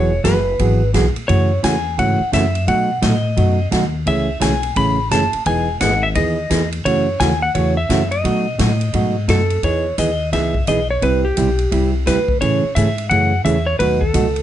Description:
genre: country, western swing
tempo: 173 BPM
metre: 4/4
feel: swing 62% on 8ths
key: E major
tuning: A4 = 440 Hz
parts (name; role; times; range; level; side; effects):
- clean lap steel guitar; melody; 0.0-14.4 s; G4 to B5; -20 LUFS; equal; none
- hollow-body jazz guitar; accompaniment; 0.0-14.3 s; B2 to G#4; -19 LUFS; right 2 dB; none
- upright bass; bass; 0.0-14.4 s; E1 to B2; -20 LUFS; left 1 dB; none
- swinging big-band drum kit; drums; 0.2-14.4 s; hi-hat, kick drum, ride cymbal, snare drum; -26 LUFS; equal; none
room: moderate studio reverb, RT60 0.5 s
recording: nothing above 10.4 kHz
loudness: -15 LUFS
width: side -11 dB against mid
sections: 0.0-9.6 A section; 9.6-14.4 B section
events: none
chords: 0.0 Eadd9; 1.3 F#m7; 2.7 B7; 4.1 Amaj7; 5.5 Emaj7; 6.9 F#m7; 8.2 B7; 9.6 Emaj7; 11.0 C; 12.4 Amaj7; 13.8 B7

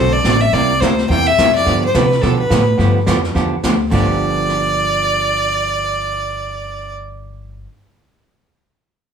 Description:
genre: country, western swing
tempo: 212 BPM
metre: 4/4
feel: swing 59% on 8ths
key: G mixolydian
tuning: A4 = 440 Hz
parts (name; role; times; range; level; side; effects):
- clear fiddle; melody; 0.0-6.9 s; A4 to G5; -17 LUFS; left 1 dB; none
- archtop guitar, miked and amplified; accompaniment; 0.0-7.7 s; G2 to A4; -19 LUFS; right 3 dB; none
- upright bass; bass; 0.0-7.6 s; G1 to C3; -20 LUFS; equal; none
- jazz brush drum kit; drums; 0.2-4.6 s; brushed snare drum, crash cymbal, hi-hat, kick drum, rim click, snare drum; -22 LUFS; left 1 dB; none
room: light reverb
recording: studio ambience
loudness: -13 LUFS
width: side -7 dB against mid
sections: 0.0-3.9 A section; 3.9-6.2 B section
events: none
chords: 0.0 D7; 0.5 C7; 1.7 G7

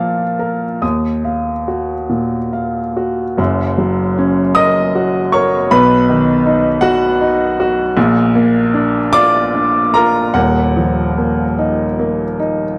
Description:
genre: neoclassical minimalist piano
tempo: 45-54 BPM (dotted quarters)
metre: 6/8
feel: rubato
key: unclear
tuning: A4 = 441 Hz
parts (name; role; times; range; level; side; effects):
- clear baby grand piano; solo; 0.0-12.8 s; D#1 to D#6; -15 LUFS; equal; none
room: moderate spring reverb, RT60 2.3 s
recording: dark, warm production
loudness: -15 LUFS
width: mono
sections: 0.0-3.4 A section; 3.4-12.8 B section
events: none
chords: 0.0 A#; 0.8 D#madd9; 3.4 F#; 5.7 B; 8.0 A#; 10.4 D#madd9

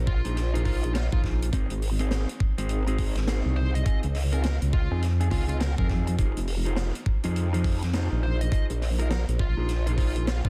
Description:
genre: glitch hop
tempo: 103 BPM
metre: 4/4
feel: swing 61% on 16ths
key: unclear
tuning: A4 = 440 Hz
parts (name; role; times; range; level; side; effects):
- growl bass; bass; 0.0-10.4 s; F1 to F2; -28 LUFS; equal; chorus, tube saturation
- dark smooth lead guitar; melody; 0.1-10.5 s; F4 to Eb5; -40 LUFS; equal; overdrive, delay
- electronic kick drum; drums; 0.1-10.5 s; none; -28 LUFS; equal; none
- mellow electric guitar; stabs; 0.2-10.5 s; C4 to C5; -37 LUFS; equal; vintage 12-bit sampler grit, sidechain pumping, delay
- swinging big-band drum kit; drums; 0.2-10.4 s; hi-hat, snare drum; -38 LUFS; equal; none
- rubbery square bass; bass; 1.1-5.3, 10.4-10.5 s; Bb1 to F2; -27 LUFS; equal; none
room: little or no reverb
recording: dense, heavily limited modern master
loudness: -26 LUFS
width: mono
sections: 0.0-10.5 A section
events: none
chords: 0.0 Bb7sus4; 1.5 Ab; 3.9 Dbmaj7; 6.2 Fm7; 8.5 Bb7sus4

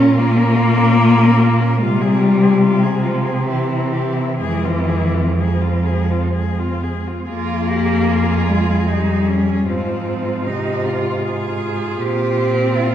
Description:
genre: classical, lyrical piece for cello ensemble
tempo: 60-81 BPM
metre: 3/4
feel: rubato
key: F minor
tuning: A4 = 440 Hz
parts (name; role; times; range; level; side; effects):
- warm cello; melody; 0.0-12.9 s; E4 to Bb4; -26 LUFS; left 4 dB; none
- rich cello; second line; 0.0-12.9 s; Ab3 to Ab4; -25 LUFS; right 4 dB; none
- warm cello; accompaniment; 0.0-12.9 s; C3 to Db4; -18 LUFS; left 3 dB; none
- dark cello; bass; 0.0-12.9 s; F2 to C3; -19 LUFS; right 2 dB; none
room: wet recital hall reverb, RT60 1.6 s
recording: heard from further back in the room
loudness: -15 LUFS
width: side -10 dB against mid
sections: 0.0-7.3 A section; 7.3-12.9 B section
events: none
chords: 0.0 Bbm; 1.8 Fm/C; 3.5 C; 4.4 Fm; 9.7 Fm/Ab; 12.0 Bb5

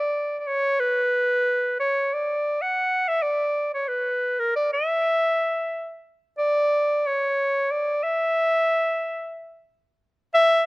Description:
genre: klezmer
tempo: 91 BPM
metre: 3/4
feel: straight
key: unclear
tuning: A4 = 440 Hz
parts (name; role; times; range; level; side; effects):
- clear clarinet; solo; 0.0-10.6 s; A#4 to F#5; -20 LUFS; equal; none
room: little or no reverb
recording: recorded outdoors, with no room sound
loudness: -21 LUFS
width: side -25 dB against mid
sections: 0.0-10.3 A section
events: none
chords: none

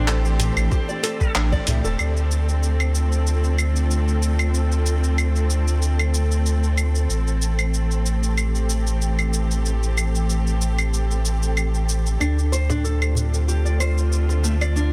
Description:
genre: organic downtempo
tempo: 94 BPM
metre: 4/4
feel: swing 54% on 16ths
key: D minor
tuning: A4 = 443 Hz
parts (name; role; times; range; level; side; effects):
- electric slide guitar; melody; 0.0-1.3 s; C5; -40 LUFS; equal; none
- warm studio string section; sustained chords; 0.0-14.9 s; D3 to A4; -30 LUFS; equal; sidechain pumping
- nylon-string guitar; arpeggios; 0.0-2.0, 12.2-14.9 s; A3 to D5; -31 LUFS; equal; tape echo
- warm sub bass; bass; 0.0-14.9 s; E1 to D2; -22 LUFS; equal; sidechain pumping
- dusty soul sampler-style drum kit; drums; 0.1-14.9 s; claves, handclaps, hi-hat, shaker; -30 LUFS; equal; overdrive
- darbuka; percussion; 0.3-1.8, 12.4-14.6 s; none; -32 LUFS; equal; none
- electronic kick drum; drums; 0.7-1.6 s; none; -24 LUFS; equal; none
room: light reverb, digital ambience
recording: dense, heavily limited modern master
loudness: -21 LUFS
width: mono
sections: 0.0-2.0 A section; 2.0-14.9 B section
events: none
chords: 0.0 Am7; 2.0 Dm7; 7.1 Am7; 12.2 Dm7

